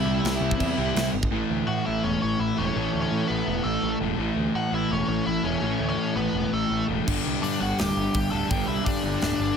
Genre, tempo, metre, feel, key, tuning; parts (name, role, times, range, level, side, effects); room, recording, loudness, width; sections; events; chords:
punk rock; 167 BPM; 4/4; straight; A4 = 441 Hz
nasal lead guitar with a parked wah; melody; 0.0-9.6 s; A3 to A5; -29 LUFS; left 1 dB; overdrive
distorted electric guitar; riff; 0.0-9.6 s; G2 to C4; -28 LUFS; left 12 dB; distortion
overdriven semi-hollow guitar; riff; 0.0-9.6 s; G2 to C4; -29 LUFS; right 14 dB
fuzz picked electric bass; bass; 0.1-9.5 s; D1 to A2; -30 LUFS; equal; overdrive
tight metal drum kit; drums; 0.2-1.3, 7.1-9.3 s; crash cymbal, hi-hat, kick drum, snare drum; -29 LUFS; equal
light reverb; -23 LUFS; side -6 dB against mid
0.0-1.3 A section; 1.3-9.6 B section
half time 1.3-9.6
0.0 C; 1.3 A; 7.1 G5